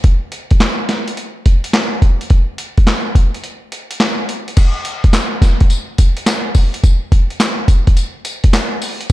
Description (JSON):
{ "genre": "R&B", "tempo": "106 BPM", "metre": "4/4", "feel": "swing 67% on 16ths", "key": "none", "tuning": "none", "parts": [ { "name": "boom bap sampler-style drum kit", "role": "drums", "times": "0.0-9.1 s", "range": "crash cymbal, handclaps, hi-hat, kick drum, snare drum, tambourine", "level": "-12 LUFS", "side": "equal", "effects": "none" } ], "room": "little or no reverb", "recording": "dark, warm production", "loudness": "-12 LUFS", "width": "side -17 dB against mid", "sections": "0.0-4.6 A section; 4.6-9.1 B section", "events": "break 3.4-4.6", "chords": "none" }